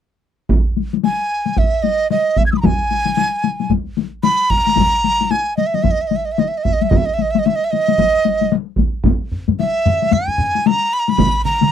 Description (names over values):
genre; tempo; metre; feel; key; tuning
japanese traditional, taiko drum ensemble; 112 BPM; 4/4; swing 60% on 16ths; Eb miyako bushi; A4 = 440 Hz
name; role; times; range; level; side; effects
taiko ensemble; percussion; 0.5-11.7 s; none; -19 LUFS; left 14 dB; none
taiko ensemble; percussion; 0.5-11.3 s; none; -18 LUFS; right 2 dB; none
breathy dizi; melody; 1.0-11.7 s; Eb5 to Ab6; -17 LUFS; right 2 dB; none
taiko ensemble; percussion; 9.1-10.5 s; none; -20 LUFS; equal; none
taiko ensemble; percussion; 11.2-11.7 s; none; -20 LUFS; right 6 dB; none
room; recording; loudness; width
little or no reverb; dry, close 1970s-style studio recording; -14 LUFS; side -9 dB against mid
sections
0.5-9.1 A section; 9.1-11.7 B section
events
none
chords
none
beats
| 0.50 1.03 1.57 2.10 | 2.64 3.18 3.71 4.25 | 4.78 5.32 5.85 6.39 | 6.92 7.46 7.99 8.52 | 9.06 9.59 10.12 10.66 | 11.19